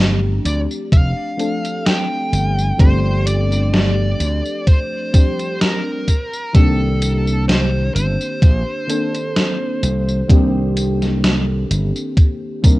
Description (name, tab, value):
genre	vaporwave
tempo	64 BPM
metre	4/4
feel	swing 54% on 16ths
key	C dorian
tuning	A4 = 440 Hz
part	mellow FM electric piano	accompaniment	0.0-12.8 s	Eb3 to Bb4	-23 LUFS	left 1 dB	lush chorus
part	slap bass	bass	0.0-12.8 s	F1 to D2	-17 LUFS	equal	none
part	smooth overdriven lead guitar	melody	0.5-12.8 s	A4 to G5	-25 LUFS	equal	tape echo
part	gated 80s digital drum machine	drums	0.5-12.8 s	hi-hat, snare drum, tambourine	-20 LUFS	equal	gated reverb, gated reverb snare
part	electronic kick drum	drums	0.9-12.8 s	none	-10 LUFS	equal	none
room	little or no reverb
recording	rough home demo mix, cassette tape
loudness	-14 LUFS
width	side -18 dB against mid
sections	0.0-12.8 A section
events	none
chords	0.0 G7sus4; 6.1 Cm7